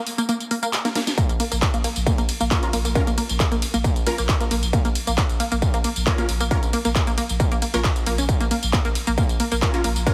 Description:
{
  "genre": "driving peak-time techno",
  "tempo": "135 BPM",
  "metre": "4/4",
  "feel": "straight",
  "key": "Bb minor",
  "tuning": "A4 = 440 Hz",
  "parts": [
    { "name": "techno drum kit", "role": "drums", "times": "0.1-10.1 s", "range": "handclaps, hi-hat, ride cymbal, snare drum, tambourine", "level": "-29 LUFS", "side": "equal", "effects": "overdrive, sidechain pumping on hats, small room reverb, sidechain pumping on perc, sidechain pumping on cymbals" },
    { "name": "tight sequenced synth", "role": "riff", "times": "0.2-10.1 s", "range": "Bb3 to Bb4", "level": "-28 LUFS", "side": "equal", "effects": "chorus, sidechain pumping, digital delay" },
    { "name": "electronic kick drum", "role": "drums", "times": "1.2-10.1 s", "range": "none", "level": "-24 LUFS", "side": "equal", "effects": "distortion, overdrive, small room reverb" },
    { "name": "saturated sub bass", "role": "bass", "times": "1.3-10.1 s", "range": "Bb1", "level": "-29 LUFS", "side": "equal", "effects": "overdrive, sidechain pumping, low-pass filter" },
    { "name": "rave stab", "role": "stabs", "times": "2.5-10.1 s", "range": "Db4 to Bb4", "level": "-31 LUFS", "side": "equal", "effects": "chorus, built-in reverb, phaser, sidechain pumping, digital delay" }
  ],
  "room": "light reverb",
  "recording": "heavily compressed radio sound",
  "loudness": "-22 LUFS",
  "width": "mono",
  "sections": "0.0-10.1 A section",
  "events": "break 0.0-1.2; drum fill 0.8-1.2",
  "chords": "0.0 Bbm"
}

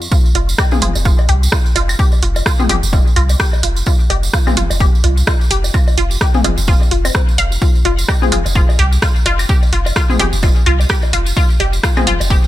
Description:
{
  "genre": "minimal techno",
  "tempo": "128 BPM",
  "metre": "4/4",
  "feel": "swing 58% on 16ths",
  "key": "F minor",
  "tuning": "A4 = 437 Hz",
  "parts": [
    { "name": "punchy sub bass", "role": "bass", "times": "0.0-12.4 s", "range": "F1 to C2", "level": "-16 LUFS", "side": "equal", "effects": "sidechain pumping, high-pass filter" },
    { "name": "tambourine", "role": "percussion", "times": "0.0-12.5 s", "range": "none", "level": "-26 LUFS", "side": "right 5 dB", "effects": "none" },
    { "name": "resonant blip pluck", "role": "riff", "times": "0.1-12.4 s", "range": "C4 to F5", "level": "-21 LUFS", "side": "left 1 dB", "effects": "chorus, phaser, sidechain pumping, ping-pong delay" },
    { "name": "electronic kick drum", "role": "drums", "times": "0.1-12.4 s", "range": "none", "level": "-14 LUFS", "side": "equal", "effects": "none" },
    { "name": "punchy analog drum machine", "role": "drums", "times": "0.3-12.2 s", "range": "hi-hat, rim click", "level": "-20 LUFS", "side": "right 2 dB", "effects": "none" },
    { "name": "electronic woodblock, claves and toms", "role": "percussion", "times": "0.4-12.3 s", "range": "none", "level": "-24 LUFS", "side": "left 4 dB", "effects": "digital delay" },
    { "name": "filtered dub chord stab", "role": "stabs", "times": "0.7-12.1 s", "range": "C4 to Ab4", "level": "-23 LUFS", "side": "left 3 dB", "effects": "wide subtle chorus, digital delay" }
  ],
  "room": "little or no reverb",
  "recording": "none",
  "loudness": "-11 LUFS",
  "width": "side -14 dB against mid",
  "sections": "0.1-12.5 A section",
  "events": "drop 0.1-12.5",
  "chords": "0.1 Fm"
}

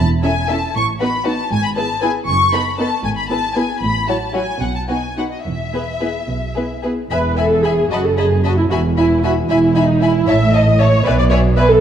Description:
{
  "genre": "quick classical-period movement for string orchestra",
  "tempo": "71-79 BPM (dotted quarters)",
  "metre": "6/8",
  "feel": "rubato",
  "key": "E major",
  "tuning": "A4 = 441 Hz",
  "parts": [
    { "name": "warm studio violin section", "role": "melody", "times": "0.0-11.7 s", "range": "D#5 to C#6", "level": "-22 LUFS", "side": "left 4 dB", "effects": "none" },
    { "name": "warm studio cello section", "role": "bass", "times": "0.0-11.7 s", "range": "E2 to B2", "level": "-21 LUFS", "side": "right 2 dB", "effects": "none" },
    { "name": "warm studio double bass section", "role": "bass", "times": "0.0-11.7 s", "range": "E1 to B1", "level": "-20 LUFS", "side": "right 2 dB", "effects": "none" },
    { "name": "rich studio violin section", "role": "second line", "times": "0.2-11.6 s", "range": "F#4 to A5", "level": "-23 LUFS", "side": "left 3 dB", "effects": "none" },
    { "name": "warm studio viola section", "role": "accompaniment", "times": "0.2-11.8 s", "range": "F#3 to E5", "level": "-18 LUFS", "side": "right 1 dB", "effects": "none" }
  ],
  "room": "moderate scoring stage reverb, RT60 1.9 s",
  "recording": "dark, warm production",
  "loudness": "-14 LUFS",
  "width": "side -9 dB against mid",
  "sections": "0.0-7.1 A section; 7.1-11.8 B section",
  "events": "none",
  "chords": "0.0 A; 0.8 B7/A; 1.5 E/G#; 2.3 B7/F#; 3.0 E/G#; 3.8 F#m7/A; 4.6 B; 5.5 E5; 7.1 E; 7.9 B7/F#; 8.7 E; 10.3 A; 11.1 E7/B"
}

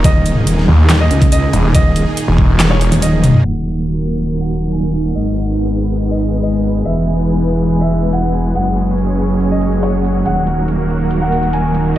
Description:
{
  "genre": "heavy wobble dubstep",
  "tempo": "141 BPM",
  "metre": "4/4",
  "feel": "half-time",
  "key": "Eb phrygian",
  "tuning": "A4 = 439 Hz",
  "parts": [
    { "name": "warm grand piano", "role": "melody", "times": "0.0-12.0 s", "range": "Db5 to Ab5", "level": "-23 LUFS", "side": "equal", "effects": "tape echo" },
    { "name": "supersaw pad", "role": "sustained chords", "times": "0.0-12.0 s", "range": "Bb2 to Db5", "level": "-21 LUFS", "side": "right 1 dB", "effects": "sidechain pumping" },
    { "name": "metallic wobble bass", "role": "bass", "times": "0.0-12.0 s", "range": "Eb1 to Db2", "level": "-15 LUFS", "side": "equal", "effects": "chorus, overdrive" },
    { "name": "snarling distorted saw bass", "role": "bass", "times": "0.0-2.9 s", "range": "Eb1 to Eb2", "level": "-11 LUFS", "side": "equal", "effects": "distortion, overdrive" },
    { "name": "dubstep drum kit", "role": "drums", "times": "0.0-12.0 s", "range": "crash cymbal, handclaps, hi-hat, snare drum, toms", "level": "-16 LUFS", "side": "equal", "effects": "overdrive" },
    { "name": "electronic kick drum", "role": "drums", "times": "0.0-2.5 s", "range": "none", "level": "-12 LUFS", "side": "equal", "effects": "overdrive" },
    { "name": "airy breathy pad", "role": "texture", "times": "3.4-12.0 s", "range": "Db4 to Ab5", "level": "-23 LUFS", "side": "right 2 dB", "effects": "chorus, phaser, sidechain pumping" }
  ],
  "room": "light reverb",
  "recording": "played on a big sound system in a bare room, large studio reverb, low-pass filter",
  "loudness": "-12 LUFS",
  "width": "side -13 dB against mid",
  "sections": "0.0-3.4 A section; 3.4-12.0 B section",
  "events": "drop 0.0-3.4; kick drops out 3.0-3.4; drum fill 3.1-3.4; filter sweep 3.4-12.0",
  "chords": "0.0 Eb5; 3.4 Ebm; 5.2 Abm; 6.9 E; 8.6 Gbsus2; 10.3 Ebm"
}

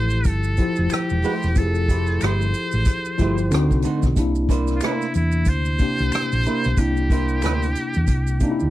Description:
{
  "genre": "R&B, neo-soul",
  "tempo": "92 BPM",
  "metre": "4/4",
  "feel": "swing 57% on 16ths",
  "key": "unclear",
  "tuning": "A4 = 438 Hz",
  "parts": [
    { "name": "trumpet with metal mute", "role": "melody", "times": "0.0-8.7 s", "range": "E4 to C5", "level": "-27 LUFS", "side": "equal", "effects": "none" },
    { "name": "tine electric piano", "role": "accompaniment", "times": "0.0-8.7 s", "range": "C3 to C5", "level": "-24 LUFS", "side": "left 2 dB", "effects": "medium stereo tremolo" },
    { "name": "hollow-body short-scale fingered electric bass", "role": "bass", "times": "0.0-8.7 s", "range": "E1 to E2", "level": "-21 LUFS", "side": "equal", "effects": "transformer saturation" },
    { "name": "maracas and finger snaps", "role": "percussion", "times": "0.1-8.7 s", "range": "none", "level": "-38 LUFS", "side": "right 1 dB", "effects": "none" },
    { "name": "unplugged drum kit", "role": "drums", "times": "0.3-8.6 s", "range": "hi-hat, kick drum, rim click", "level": "-22 LUFS", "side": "equal", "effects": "none" },
    { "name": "flamenco guitar", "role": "second line", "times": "0.9-7.7 s", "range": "A3 to C5", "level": "-27 LUFS", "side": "right 6 dB", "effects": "none" }
  ],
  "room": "small room ambience",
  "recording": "vinyl crackle",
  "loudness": "-18 LUFS",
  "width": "side -15 dB against mid",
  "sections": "0.0-8.7 A section",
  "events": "none",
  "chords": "0.0 Fmaj9; 3.5 D7b9; 4.2 C9"
}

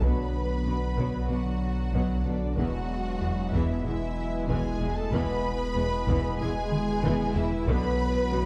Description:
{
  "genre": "cinematic, hybrid orchestral and electronic film score",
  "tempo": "94 BPM",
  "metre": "4/4",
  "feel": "straight",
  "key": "unclear",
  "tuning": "A4 = 439 Hz",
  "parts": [
    { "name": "rich symphonic violin section", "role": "melody", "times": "0.0-8.5 s", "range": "D5 to B5", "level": "-41 LUFS", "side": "equal", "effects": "none" },
    { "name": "rich studio violin section", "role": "second line", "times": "0.0-8.5 s", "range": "D4 to B4", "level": "-38 LUFS", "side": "equal", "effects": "none" },
    { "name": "rich studio viola section", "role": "accompaniment", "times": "0.0-8.4 s", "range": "D3 to G#4", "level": "-37 LUFS", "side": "equal", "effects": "none" },
    { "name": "bright trombone section", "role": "sustained chords", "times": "0.0-8.5 s", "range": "B2 to G#3", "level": "-39 LUFS", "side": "equal", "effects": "none" },
    { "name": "soft additive organ-like pad", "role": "sustained chords", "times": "0.0-8.5 s", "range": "D3 to B4", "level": "-39 LUFS", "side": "equal", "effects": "ensemble chorus, built-in reverb" },
    { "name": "warm French horn section", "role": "sustained chords", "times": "0.0-8.5 s", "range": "D3 to B3", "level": "-38 LUFS", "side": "equal", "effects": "none" },
    { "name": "clear symphonic cello section", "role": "bass", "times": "0.0-8.4 s", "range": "E2 to B2", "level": "-39 LUFS", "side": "equal", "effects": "none" },
    { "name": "rich symphonic double bass section", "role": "bass", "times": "0.0-8.4 s", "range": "E1 to B1", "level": "-36 LUFS", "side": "equal", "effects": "none" },
    { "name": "warm sub bass", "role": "bass", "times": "0.0-8.5 s", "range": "E1 to B1", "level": "-35 LUFS", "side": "equal", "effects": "none" },
    { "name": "taiko ensemble", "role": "drums", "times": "0.0-8.3 s", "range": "none", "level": "-35 LUFS", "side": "equal", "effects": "none" }
  ],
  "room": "moderate scoring stage reverb, RT60 2.2 s",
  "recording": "dark, warm production",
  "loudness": "-28 LUFS",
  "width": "mono",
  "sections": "0.0-8.5 A section",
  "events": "drum fill 6.7-7.7",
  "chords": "0.0 Bm; 2.6 E; 7.7 Bm"
}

